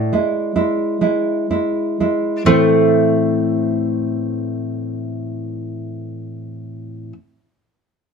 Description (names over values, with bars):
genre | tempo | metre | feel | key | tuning
romantic duo for mandolin and classical guitar | 45 BPM | 4/4 | rubato | A minor | A4 = 440 Hz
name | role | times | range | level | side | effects
mandolin | melody | 0.0-7.1 s | A3 to D4 | -21 LUFS | equal | none
nylon-string guitar | accompaniment | 0.0-7.1 s | A2 to C5 | -18 LUFS | equal | none
room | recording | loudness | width
light reverb | dark, warm production | -16 LUFS | side -6 dB against mid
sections
0.0-2.5 A section; 2.5-7.8 B section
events
slowing down 0.0-2.5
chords
0.0 E7/A; 2.5 Am